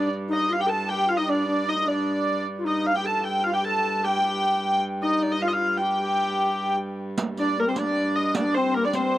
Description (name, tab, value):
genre	medieval dance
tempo	102 BPM (dotted quarters)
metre	6/8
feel	straight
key	unclear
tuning	A4 = 439 Hz
part	dark hurdy-gurdy	melody	0.0-9.2 s	Bb4 to A5	-24 LUFS	equal	slapback echo
part	bass recorder	second line	0.0-9.2 s	Bb3 to Bb4	-27 LUFS	left 2 dB	slapback echo
part	dark hurdy-gurdy	drone	0.0-9.2 s	G2	-32 LUFS	right 1 dB	stereo widening
part	riq	percussion	7.2-9.1 s	none	-29 LUFS	right 4 dB	none
room	little or no reverb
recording	recorded outdoors, with no room sound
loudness	-22 LUFS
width	side -14 dB against mid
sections	0.0-7.2 A section; 7.2-9.2 A section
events	none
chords	none